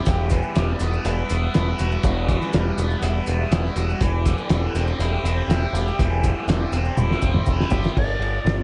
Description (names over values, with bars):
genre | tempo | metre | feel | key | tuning
psychedelic rock | 122 BPM | 4/4 | straight | E minor | A4 = 443 Hz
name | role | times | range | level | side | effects
ensemble organ-string | sustained chords | 0.0-7.9 s | G3 to G5 | -36 LUFS | equal | ensemble chorus
overdriven electric guitar | riff | 0.0-8.0 s | E2 to G4 | -29 LUFS | equal | phaser
growling picked electric bass | bass | 0.1-8.6 s | E1 to G1 | -25 LUFS | equal | overdrive
cloth-damped thuddy drum kit | drums | 0.1-8.6 s | crash cymbal, hi-hat, kick drum, ride cymbal, snare drum, toms | -25 LUFS | equal | analog delay
maracas | percussion | 0.1-7.9 s | none | -47 LUFS | equal | analog delay
breathy bright concert flute | melody | 8.0-8.6 s | D5 | -30 LUFS | equal | analog delay
room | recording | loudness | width
studio reverb | echo-heavy mix, nothing above 10.3 kHz | -22 LUFS | mono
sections
0.0-8.0 A section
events
drum fill 7.0-8.0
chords
0.1 Emadd9; 4.0 Csus2/E; 8.0 G5